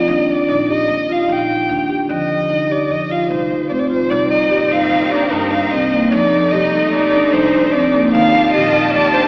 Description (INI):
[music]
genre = contemporary instrumental, chamber music in an uneven meter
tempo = 149 BPM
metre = 5/4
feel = straight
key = F mixolydian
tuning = A4 = 437 Hz
[part]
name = dark violin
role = melody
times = 0.0-9.2 s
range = Bb4 to G5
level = -19 LUFS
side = equal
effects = none
[part]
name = upright bass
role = bass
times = 0.0-9.1 s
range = Bb1 to G2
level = -30 LUFS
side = equal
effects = none
[part]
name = marimba with soft mallets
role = arpeggios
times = 0.1-9.2 s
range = D3 to G4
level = -19 LUFS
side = equal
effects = none
[part]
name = clear studio string section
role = sustained chords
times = 4.1-9.3 s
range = C3 to A5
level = -22 LUFS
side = equal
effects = none
[sound]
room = wet concert hall reverb, RT60 2.4 s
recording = heard from further back in the room, AM radio sound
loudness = -16 LUFS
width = mono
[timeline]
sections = 0.0-4.1 A section; 4.1-9.3 B section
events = none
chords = 0.1 Ebmaj7; 2.1 F5; 4.1 Cm9; 6.1 F13; 8.1 Ebadd9(#11)